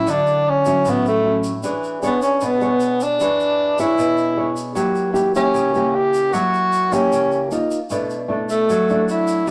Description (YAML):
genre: bossa nova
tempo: 153 BPM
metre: 4/4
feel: straight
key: unclear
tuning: A4 = 440 Hz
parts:
  - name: breathy tenor saxophone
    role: melody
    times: 0.0-9.5 s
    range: A3 to G4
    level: -20 LUFS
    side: equal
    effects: none
  - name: nylon-string guitar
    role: accompaniment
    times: 0.0-9.5 s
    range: A2 to C#5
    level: -23 LUFS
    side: equal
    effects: none
  - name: tube shaker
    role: percussion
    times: 0.1-9.5 s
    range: none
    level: -41 LUFS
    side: equal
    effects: none
room: wet large studio reverb, RT60 1.0 s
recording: none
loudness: -19 LUFS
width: mono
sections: 0.0-9.5 A section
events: none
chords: 0.0 Dmaj9; 1.6 E6; 4.8 F#7b9; 7.5 Bbsus4; 7.9 Bm7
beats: | 0.07 0.47 0.86 1.25 | 1.64 2.03 2.42 2.81 | 3.20 3.59 3.98 4.38 | 4.77 5.16 5.55 5.94 | 6.33 6.73 7.12 7.51 | 7.90 8.30 8.69 9.08 | 9.47